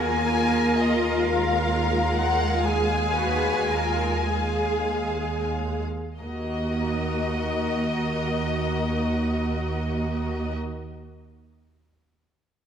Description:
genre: classical, slow romantic movement for string orchestra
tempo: 29-50 BPM (dotted quarters)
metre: 12/8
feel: rubato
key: Eb minor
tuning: A4 = 444 Hz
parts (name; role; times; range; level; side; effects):
- rich studio violin section; melody; 0.0-10.6 s; Eb5 to Ab5; -29 LUFS; left 4 dB; none
- rich studio violin section; second line; 0.0-10.5 s; Ab4 to F5; -32 LUFS; left 2 dB; none
- rich studio viola section; accompaniment; 0.0-10.5 s; Ab3 to Ab4; -27 LUFS; equal; none
- rich studio cello section; bass; 0.0-10.5 s; Eb2 to Cb5; -31 LUFS; right 2 dB; none
- rich studio double bass section; bass; 0.0-10.5 s; Eb2; -29 LUFS; right 2 dB; none
room: moderate scoring stage reverb, RT60 1.7 s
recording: none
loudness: -22 LUFS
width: side -8 dB against mid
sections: 0.0-6.2 A section; 6.2-12.7 B section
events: slowing down 0.0-6.2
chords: 0.0 Bb5/Eb; 6.2 Ebm

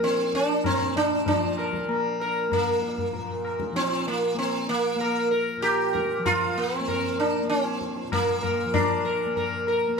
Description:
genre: indian classical, Hindustani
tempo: 96 BPM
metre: 4/4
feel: straight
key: Bb raga bhupali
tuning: A4 = 440 Hz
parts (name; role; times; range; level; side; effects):
- sitar; melody; 0.0-10.0 s; Bb3 to Bb4; -24 LUFS; right 1 dB; none
- tanpura; drone; 0.0-10.0 s; Bb2 to Bb3; -34 LUFS; left 2 dB; none
- tabla; percussion; 0.0-9.9 s; none; -30 LUFS; left 5 dB; none
room: moderate studio reverb, RT60 0.6 s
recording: none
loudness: -23 LUFS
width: side -5 dB against mid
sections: 0.0-10.0 A section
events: none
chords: none

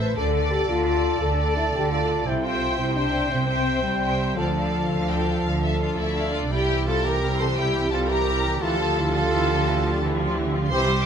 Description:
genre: cinematic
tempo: 114 BPM (dotted quarters)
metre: 12/8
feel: straight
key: C mixolydian from 6.5 s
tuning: A4 = 440 Hz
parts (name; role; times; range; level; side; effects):
- warm symphonic violin section; melody; 0.0-11.0 s; D5 to C6; -31 LUFS; left 1 dB; none
- rich symphonic violin section; second line; 0.0-11.0 s; E4 to G5; -30 LUFS; left 1 dB; none
- warm clarinet; second line; 0.0-6.3 s; A4 to C5; -34 LUFS; left 4 dB; none
- rich symphonic viola section; accompaniment; 0.0-11.1 s; E3 to C5; -30 LUFS; equal; none
- clear French horn section; sustained chords; 0.0-11.1 s; F3 to B4; -27 LUFS; left 3 dB; none
- warm symphonic cello section; bass; 0.0-11.1 s; A2 to D3; -29 LUFS; right 3 dB; none
- warm symphonic double bass section; bass; 0.0-11.1 s; A1 to D2; -27 LUFS; right 2 dB; none
- warm oboe; second line; 0.2-6.3 s; G5 to A5; -31 LUFS; right 3 dB; none
- mellow trumpet; stabs; 5.8-11.1 s; A3 to A4; -28 LUFS; right 2 dB; none
room: moderate scoring stage reverb, RT60 1.6 s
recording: none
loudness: -20 LUFS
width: side -7 dB against mid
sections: 0.0-6.5 A section; 6.5-11.1 B section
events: none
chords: 0.2 Dm; 2.3 C; 4.4 Dm; 6.5 C; 8.6 Dmadd9

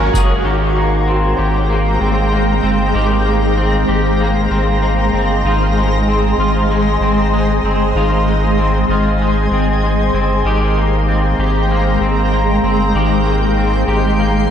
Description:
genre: dream pop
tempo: 96 BPM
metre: 4/4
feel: straight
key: Ab major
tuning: A4 = 440 Hz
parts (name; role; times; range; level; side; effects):
- raw garage guitar; accompaniment; 0.0-1.0 s; Ab3 to Bb4; -24 LUFS; right 2 dB; overdrive, tremolo, lush chorus
- shimmering ambient pad; sustained chords; 0.0-14.5 s; Ab3 to C6; -17 LUFS; equal; chorus, built-in reverb
- electric guitar at the edge of break-up; arpeggios; 0.0-14.5 s; Eb3 to Ab4; -19 LUFS; left 1 dB; ensemble chorus, ping-pong delay
- warm sub bass; bass; 0.0-14.5 s; Gb1 to Ab1; -17 LUFS; equal; none
room: moderate concert hall reverb, RT60 2.4 s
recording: dark, warm production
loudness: -12 LUFS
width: side -9 dB against mid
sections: 0.5-14.5 A section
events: none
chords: 0.5 Abmaj9; 5.5 Bb9sus4; 10.4 Abmaj9

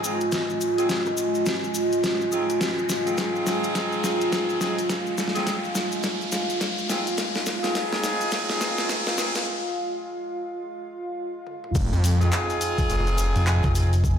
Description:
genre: glitch hop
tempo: 105 BPM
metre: 4/4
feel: swing 61% on 16ths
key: F minor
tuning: A4 = 445 Hz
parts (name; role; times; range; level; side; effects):
- dark analog pad; sustained chords; 0.0-14.2 s; Ab3 to Ab5; -30 LUFS; right 1 dB; chorus, sidechain pumping
- bright horn section; stabs; 0.0-13.9 s; C4 to Ab4; -29 LUFS; equal; sidechain pumping, dub echo
- cabasa; percussion; 0.0-14.2 s; none; -36 LUFS; left 5 dB; none
- riser; sound effects; 0.0-9.5 s; none; -32 LUFS; equal; none
- warbly tape-like pad; texture; 0.0-9.5 s; F4 to Ab5; -28 LUFS; equal; chorus, built-in reverb, sidechain pumping
- pop drum kit; drums; 0.2-14.2 s; crash cymbal, handclaps, hi-hat, rim click, snare drum, toms; -29 LUFS; left 1 dB; overdrive
- electronic kick drum; drums; 0.3-14.2 s; none; -26 LUFS; equal; overdrive, high-pass filter on kick, high-pass filter on room
- phased detuned saw bass; bass; 11.8-13.3 s; F1 to F2; -21 LUFS; equal; phaser, tube saturation
- fingered electric bass; bass; 13.4-14.2 s; F1; -20 LUFS; equal; none
room: moderate plate reverb, RT60 1.6 s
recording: played on a big sound system in a bare room, large studio reverb, high-pass filter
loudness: -22 LUFS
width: side -8 dB against mid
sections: 0.0-11.8 A section; 11.8-14.2 B section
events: build-up 0.0-11.8; drum fill 0.0-9.5, 11.5; riser 0.0-9.5; filter sweep 0.0-11.8; break 9.5-11.8; drop 11.8-14.2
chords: 0.0 Fm7

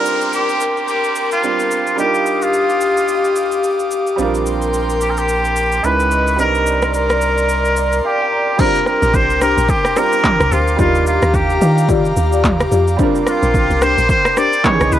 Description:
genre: amapiano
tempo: 109 BPM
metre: 4/4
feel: swing 58% on 16ths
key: Bb major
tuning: A4 = 440 Hz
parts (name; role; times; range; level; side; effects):
- trumpet with straight mute; melody; 0.0-15.0 s; F4 to D5; -17 LUFS; equal; analog delay
- clear baby grand piano; accompaniment; 0.0-15.0 s; Fb3 to Bb5; -23 LUFS; right 8 dB; cassette tape
- airy breathy pad; sustained chords; 0.0-15.0 s; G4 to Eb6; -19 LUFS; left 2 dB; chorus, sidechain pumping, cassette tape
- downlifter; sound effects; 0.0-4.2 s; none; -31 LUFS; equal; none
- deep house drum kit; drums; 0.1-15.0 s; crash cymbal, handclaps, kick drum, rim click, shaker, toms; -19 LUFS; equal; overdrive, cassette tape
- warm sub bass; bass; 4.2-8.0 s; Bb1 to Db2; -21 LUFS; equal; none
- deep mellow chord stab; stabs; 8.6-15.0 s; D4 to D5; -22 LUFS; left 8 dB; chorus, cassette tape, analog delay
- deep log drum bass; bass; 9.0-15.0 s; Bb1 to Eb3; -17 LUFS; equal; none
room: light reverb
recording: home recording on cassette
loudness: -13 LUFS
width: side -11 dB against mid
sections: 0.0-8.6 A section; 8.6-15.0 B section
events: grand piano fill 7.5-8.6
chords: 0.0 Bb69; 2.0 Ebmaj9; 4.2 Bb69; 5.8 Dbm9; 6.4 Cm9; 8.6 Bb69; 10.8 Ebmaj9; 13.0 Bb69

